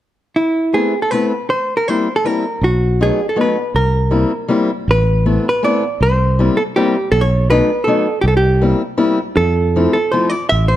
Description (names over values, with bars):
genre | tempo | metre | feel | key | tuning
musette waltz | 160 BPM | 3/4 | rubato | unclear | A4 = 435 Hz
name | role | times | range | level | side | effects
hollow-body jazz guitar | melody | 0.4-10.8 s | E4 to E5 | -16 LUFS | right 1 dB | none
fingerpicked steel-string acoustic guitar | accompaniment | 0.7-10.3 s | F3 to E4 | -18 LUFS | left 3 dB | none
fretless electric bass | bass | 2.6-10.8 s | A1 to F2 | -15 LUFS | equal | none
room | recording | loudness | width
light reverb | dark, warm production | -13 LUFS | side -12 dB against mid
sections
0.4-4.9 A section; 4.9-10.8 B section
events
none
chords
0.4 Amadd9; 1.5 C7; 2.6 B7; 3.7 C7; 4.9 Amadd9; 6.0 C7; 7.1 B7; 8.2 C7; 9.4 Fmaj7